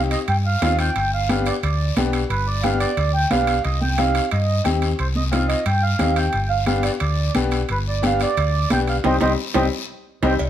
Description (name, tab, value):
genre	latin, cumbia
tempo	178 BPM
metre	4/4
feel	straight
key	C harmonic minor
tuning	A4 = 441 Hz
part	mellow accordion	melody	0.0-10.3 s	B4 to G5	-23 LUFS	right 4 dB	none
part	bright upright piano	accompaniment	0.0-10.3 s	G3 to G4	-24 LUFS	left 7 dB	none
part	fingered electric bass	bass	0.0-10.5 s	G1 to G2	-22 LUFS	equal	none
part	guiro	percussion	0.1-10.5 s	none	-33 LUFS	left 8 dB	none
part	timbales and cowbell	percussion	0.1-10.5 s	none	-29 LUFS	right 6 dB	none
part	congas	percussion	0.6-10.3 s	none	-26 LUFS	right 1 dB	none
room	light reverb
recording	none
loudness	-18 LUFS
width	side -11 dB against mid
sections	0.0-10.4 A section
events	band accent 9.0-10.4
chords	0.0 Cm; 1.0 G7; 3.6 Cm; 6.3 G; 9.0 Cm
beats	0.28 0.62 | 0.95 1.29 1.63 1.97 | 2.30 2.64 2.98 3.31 | 3.65 3.99 4.32 4.66 | 5.00 5.33 5.67 6.01 | 6.35 6.68 7.02 7.36 | 7.70 8.03 8.37 8.71 | 9.05 9.39 9.72 10.06 | 10.40